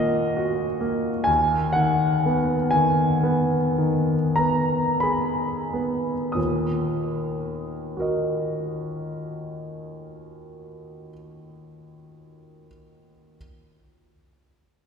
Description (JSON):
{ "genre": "classical, romantic nocturne for solo piano", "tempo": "27-48 BPM (dotted quarters)", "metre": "9/8", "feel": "rubato", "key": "Eb minor", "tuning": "A4 = 439 Hz", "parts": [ { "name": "clear concert grand piano", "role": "solo", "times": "0.0-13.4 s", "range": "Eb2 to Eb6", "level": "-22 LUFS", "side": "equal", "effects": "none" } ], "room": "wet church reverb, RT60 3.6 s", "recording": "recorded in a church or concert hall", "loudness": "-21 LUFS", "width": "side -6 dB against mid", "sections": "0.0-6.4 A section; 6.4-11.2 B section", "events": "slowing down 0.0-6.4", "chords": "0.0 Ebm; 1.3 Abm/Eb; 6.4 Ebm", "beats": "| 1.27 2.73 4.38 | 6.36 7.97 9.63" }